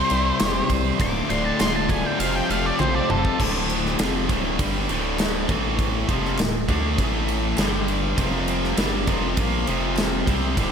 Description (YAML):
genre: classic rock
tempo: 100 BPM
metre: 4/4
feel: straight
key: D minor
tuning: A4 = 442 Hz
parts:
  - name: octave-fuzz lead guitar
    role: melody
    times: 0.0-3.4 s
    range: A4 to D6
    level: -26 LUFS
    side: left 1 dB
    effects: distortion, slapback echo
  - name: picked steel-string acoustic guitar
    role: accompaniment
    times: 0.0-3.4 s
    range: F2 to F4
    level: -32 LUFS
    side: right 3 dB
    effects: slapback echo
  - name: biting overdriven guitar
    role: riff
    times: 0.0-10.7 s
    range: D2 to D4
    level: -26 LUFS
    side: left 9 dB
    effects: slapback echo
  - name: distorted electric guitar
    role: riff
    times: 0.0-10.7 s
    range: D2 to C5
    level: -27 LUFS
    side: right 11 dB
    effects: overdrive
  - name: rubbery square bass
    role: bass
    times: 0.0-10.7 s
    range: D1 to D2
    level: -28 LUFS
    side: equal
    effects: none
  - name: big rock drum kit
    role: drums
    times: 0.1-10.7 s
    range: crash cymbal, kick drum, ride cymbal, snare drum, toms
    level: -25 LUFS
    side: equal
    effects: none
  - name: group handclap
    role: percussion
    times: 0.4-10.1 s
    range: none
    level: barely audible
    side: none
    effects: none
room: moderate lush hall reverb, RT60 2.8 s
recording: big arena sound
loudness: -20 LUFS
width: side -7 dB against mid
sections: 0.0-3.4 A section; 3.4-10.7 B section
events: lead electric guitar solo 0.0-3.4; drum fill 2.8-3.4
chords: 0.0 C; 1.0 Dm; 2.2 F; 3.4 Dm; 5.5 A5; 6.1 Dm; 7.0 A5; 7.6 G5; 8.2 F5